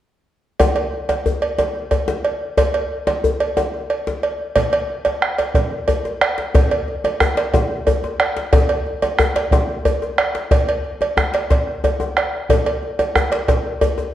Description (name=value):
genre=west african traditional, West African drum ensemble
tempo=121 BPM (dotted quarters)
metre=12/8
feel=straight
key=none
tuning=none
part: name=cowbell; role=percussion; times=0.6-14.0 s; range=none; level=-20 LUFS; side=right 3 dB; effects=none
part: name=djembe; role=percussion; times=0.6-14.1 s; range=none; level=-21 LUFS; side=left 2 dB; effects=none
part: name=bombo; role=percussion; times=4.6-13.6 s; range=none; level=-19 LUFS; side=right 1 dB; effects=none
room=wet recital hall reverb, RT60 1.4 s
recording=worn, warbling old tape, cassette tape, warbly pitch drift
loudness=-16 LUFS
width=side -12 dB against mid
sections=0.6-4.6 A section; 4.6-14.1 B section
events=none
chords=none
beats=| 0.60 1.09 1.59 2.08 | 2.58 3.08 3.57 4.07 | 4.57 5.06 5.56 6.05 | 6.55 7.04 7.54 8.04 | 8.53 9.03 9.52 10.02 | 10.51 11.01 11.50 12.00 | 12.49 12.99 13.48 13.98